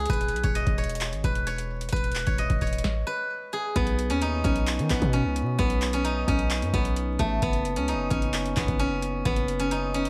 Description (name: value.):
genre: hip hop, trap.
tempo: 131 BPM.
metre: 4/4.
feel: half-time.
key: unclear.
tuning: A4 = 442 Hz.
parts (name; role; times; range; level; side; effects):
steel-string zither; melody; 0.0-10.1 s; A3 to D#5; -30 LUFS; equal; none.
hard-hitting 808-style bass; bass; 0.0-10.1 s; E1 to D#3; -31 LUFS; equal; none.
booming analog drum machine; drums; 0.1-10.1 s; handclaps, hi-hat, kick drum, snare drum; -30 LUFS; equal; none.
room: little or no reverb.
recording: vinyl crackle.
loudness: -26 LUFS.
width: mono.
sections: 0.0-3.8 A section; 3.8-10.1 B section.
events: stop 2.8-3.8.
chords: 0.1 E; 3.8 B; 7.4 F#5.